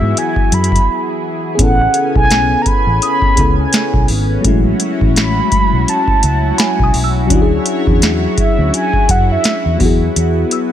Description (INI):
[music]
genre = contemporary R&B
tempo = 84 BPM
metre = 4/4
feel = swing 58% on 16ths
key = E major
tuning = A4 = 440 Hz
[part]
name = mellow horn-like synth lead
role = melody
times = 0.0-9.8 s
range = E5 to B5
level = -18 LUFS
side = right 2 dB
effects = chorus, digital delay
[part]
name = mellow FM electric piano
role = accompaniment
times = 0.0-10.7 s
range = F#3 to A4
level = -18 LUFS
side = left 4 dB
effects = chorus
[part]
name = lush unison pad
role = sustained chords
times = 0.0-10.7 s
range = C#3 to G#5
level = -22 LUFS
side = right 1 dB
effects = chorus, sidechain pumping
[part]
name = vintage muted fingered electric bass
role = bass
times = 0.0-10.4 s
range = G#1 to G#2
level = -16 LUFS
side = equal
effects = none
[part]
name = booming analog drum machine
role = drums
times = 0.2-10.7 s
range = hi-hat, kick drum, snare drum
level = -15 LUFS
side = equal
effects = none
[part]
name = glassy wavetable pluck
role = texture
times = 3.0-10.7 s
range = B5 to E6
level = -26 LUFS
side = right 1 dB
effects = chorus, digital delay
[sound]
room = little or no reverb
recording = none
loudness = -11 LUFS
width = side -10 dB against mid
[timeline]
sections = 0.0-10.7 A section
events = break 0.9-1.6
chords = 0.0 Eadd9; 1.6 Amaj9; 4.4 F#m9/A; 7.3 Dmaj9#11; 9.8 Eadd9